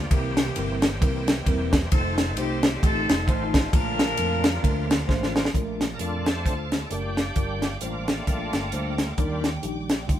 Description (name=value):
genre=uptempo gospel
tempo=132 BPM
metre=4/4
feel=swing 58% on 8ths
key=Bb major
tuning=A4 = 436 Hz
part: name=warm horn section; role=melody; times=0.0-5.1 s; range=A3 to Bb4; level=-29 LUFS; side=left 1 dB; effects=none
part: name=bright tonewheel organ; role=sustained chords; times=0.0-9.5 s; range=D3 to Bb4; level=-33 LUFS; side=right 1 dB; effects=slow rotary speaker, overdrive, chorus vibrato
part: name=fingered electric bass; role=bass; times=0.0-10.2 s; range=E1 to F2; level=-30 LUFS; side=equal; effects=none
part: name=mellow tine electric piano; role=accompaniment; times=0.1-10.2 s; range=G2 to C5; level=-31 LUFS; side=equal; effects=medium stereo tremolo
part: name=tight funk drum kit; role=drums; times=0.1-10.2 s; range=hi-hat, kick drum, ride cymbal, snare drum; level=-23 LUFS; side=equal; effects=none
part: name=warm studio string section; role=sustained chords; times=5.5-10.2 s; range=D5 to D6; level=-40 LUFS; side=equal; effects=none
room=moderate studio reverb, RT60 0.8 s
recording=band playing live in one room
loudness=-22 LUFS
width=side -11 dB against mid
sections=0.0-5.5 A section; 5.5-10.2 B section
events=drum fill 5.1-5.5; tonewheel organ solo 5.5-10.2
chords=0.1 C7; 1.9 F7; 3.7 Bbmaj7; 7.4 Gm7; 9.2 Ebmaj7